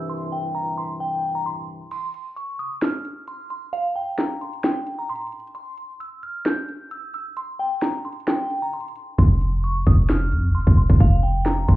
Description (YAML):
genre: hip hop, trap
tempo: 132 BPM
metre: 4/4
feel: half-time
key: unclear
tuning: A4 = 440 Hz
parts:
  - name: glassy synth bell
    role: melody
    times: 0.0-11.8 s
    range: F5 to G6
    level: -28 LUFS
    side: equal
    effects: chorus, phaser, low-pass filter, tape echo
  - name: mellow French horn section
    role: sustained chords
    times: 0.0-1.9 s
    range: C2 to E3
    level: -32 LUFS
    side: left 1 dB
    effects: low-pass filter
  - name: trap drum kit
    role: drums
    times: 1.9-11.8 s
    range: crash cymbal, handclaps, hi-hat, kick drum, snare drum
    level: -19 LUFS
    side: equal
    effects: none
  - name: warm 808-style bass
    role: bass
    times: 9.2-11.8 s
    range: F1 to F2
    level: -19 LUFS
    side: equal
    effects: none
room: little or no reverb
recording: heard muffled through a wall, club reverb, EQ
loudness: -20 LUFS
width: side -17 dB against mid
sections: 0.0-1.9 A section; 1.9-11.8 B section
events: kick muted 1.9-9.2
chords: 0.0 C; 1.9 N.C.; 9.2 F5